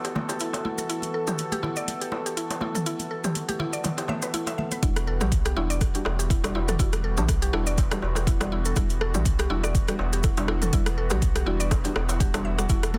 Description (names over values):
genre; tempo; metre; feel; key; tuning
afro house; 122 BPM; 4/4; swing 55% on 16ths; E minor; A4 = 443 Hz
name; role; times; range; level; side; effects
warm analog pad; sustained chords; 0.0-13.0 s; E3 to A4; -36 LUFS; equal; chorus, sidechain pumping
mallet-like synth pluck; arpeggios; 0.0-13.0 s; D4 to E5; -35 LUFS; equal; chorus, sidechain pumping, delay
deep house drum kit; drums; 0.0-12.9 s; hi-hat, rim click, toms; -34 LUFS; equal; overdrive, studio reverb
darbuka; percussion; 0.0-12.4 s; none; -38 LUFS; equal; none
cabasa; percussion; 0.1-12.9 s; none; -41 LUFS; equal; none
congas; percussion; 0.2-4.8, 12.9-13.0 s; none; -36 LUFS; equal; none
deep mellow chord stab; stabs; 4.8-12.8 s; G3 to F#4; -36 LUFS; equal; chorus, phaser, sidechain pumping, delay
warm sub bass; bass; 4.8-13.0 s; E1 to B1; -30 LUFS; equal; sidechain pumping
electronic kick drum; drums; 4.8-12.8 s; none; -27 LUFS; equal; overdrive, studio reverb
room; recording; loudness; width
light reverb; dense, heavily limited modern master; -26 LUFS; mono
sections
0.0-4.8 A section; 4.8-13.0 B section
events
filter sweep on drum 0.0-4.8; filter sweep on synth pluck 0.0-4.8; drop 4.8-13.0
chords
0.0 Em; 4.8 Em7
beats
0.40 | 0.89 1.39 1.88 2.37 | 2.86 3.35 3.84 4.34 | 4.83 5.32 5.81 6.30 | 6.79 7.29 7.78 8.27 | 8.76 9.25 9.75 10.24 | 10.73 11.22 11.71 12.21 | 12.70